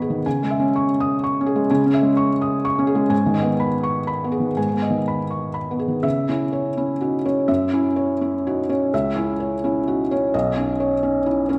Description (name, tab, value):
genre	neoclassical minimalist piano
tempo	126 BPM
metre	3/4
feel	rubato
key	C# minor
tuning	A4 = 440 Hz
part	felt-muted upright piano	solo	0.0-11.6 s	B1 to D#7	-21 LUFS	equal	none
room	wet recital hall reverb, RT60 1.4 s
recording	recorded in a church or concert hall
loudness	-21 LUFS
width	mono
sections	0.0-6.0 A section; 6.0-11.6 B section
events	none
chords	0.3 C#m; 3.1 G#m; 6.0 C#m; 7.5 F#5; 8.9 C#m; 10.3 Badd9